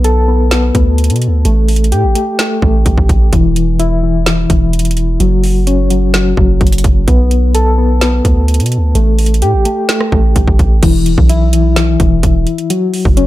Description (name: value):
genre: hip hop, trap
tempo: 128 BPM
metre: 4/4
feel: half-time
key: B minor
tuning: A4 = 439 Hz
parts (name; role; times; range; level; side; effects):
- soft electric-piano-like synth keys; arpeggios; 0.0-13.3 s; E3 to A4; -15 LUFS; left 3 dB; chorus, tremolo, ping-pong delay
- long sustained 808-style bass; bass; 0.0-13.3 s; E1 to B2; -12 LUFS; equal; none
- trap drum kit; drums; 0.0-13.3 s; crash cymbal, hi-hat, kick drum, rim click, snare drum; -14 LUFS; right 1 dB; none
room: digital ambience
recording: none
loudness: -9 LUFS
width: side -16 dB against mid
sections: 0.0-10.8 A section; 10.8-13.3 B section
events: none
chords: 0.0 Bm7; 1.5 Gsus2/A; 3.3 N.C.; 5.2 F#5; 7.1 Bm7; 9.0 Gsus2/A; 10.8 E5; 12.7 F#5